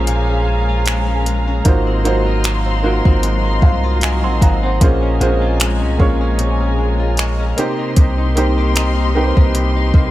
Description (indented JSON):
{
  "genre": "contemporary R&B",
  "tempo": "76 BPM",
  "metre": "4/4",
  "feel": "swing 54% on 16ths",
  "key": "Bb minor",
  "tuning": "A4 = 440 Hz",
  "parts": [
    { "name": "clear baby grand piano", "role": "accompaniment", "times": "0.0-10.1 s", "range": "Bb3 to C6", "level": "-20 LUFS", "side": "right 2 dB", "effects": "none" },
    { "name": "dark studio string section", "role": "sustained chords", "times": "0.0-10.1 s", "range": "Gb3 to C6", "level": "-24 LUFS", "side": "equal", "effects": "sidechain pumping" },
    { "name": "direct-recorded clean electric guitar", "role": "arpeggios", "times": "0.0-10.1 s", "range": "Ab2 to G4", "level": "-24 LUFS", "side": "left 5 dB", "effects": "phaser, digital delay" },
    { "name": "long sustained 808-style bass", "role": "bass", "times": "0.0-10.1 s", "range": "Ab1 to C2", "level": "-17 LUFS", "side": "equal", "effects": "none" },
    { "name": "gated 80s digital drum machine", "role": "drums", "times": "0.1-10.1 s", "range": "finger snaps, hi-hat, kick drum", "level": "-14 LUFS", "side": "equal", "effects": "none" }
  ],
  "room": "digital ambience",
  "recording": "none",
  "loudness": "-13 LUFS",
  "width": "side -15 dB against mid",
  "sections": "0.0-10.1 A section",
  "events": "none",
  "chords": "0.0 Bbm7; 1.7 Ab13; 4.8 Bbm7; 7.6 Cm7"
}